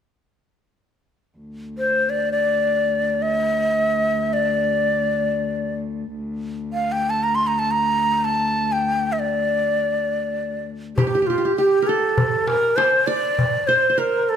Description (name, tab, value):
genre	Arabic maqam ensemble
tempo	free time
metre	none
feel	none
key	D maqam bayati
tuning	A4 = 440 Hz
part	muted cello	drone	1.4-11.0 s	D2	-27 LUFS	left 4 dB	none
part	breathy bright ney	melody	1.8-14.4 s	F4 to C6	-19 LUFS	equal	none
part	qanun	second line	11.0-14.4 s	G4 to D5	-24 LUFS	right 2 dB	none
part	darbuka	percussion	11.0-14.4 s	none	-24 LUFS	left 2 dB	none
room	light reverb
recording	close, detailed microphones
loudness	-18 LUFS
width	side -8 dB against mid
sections	1.4-11.0 A section; 11.0-14.4 B section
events	none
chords	none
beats	free time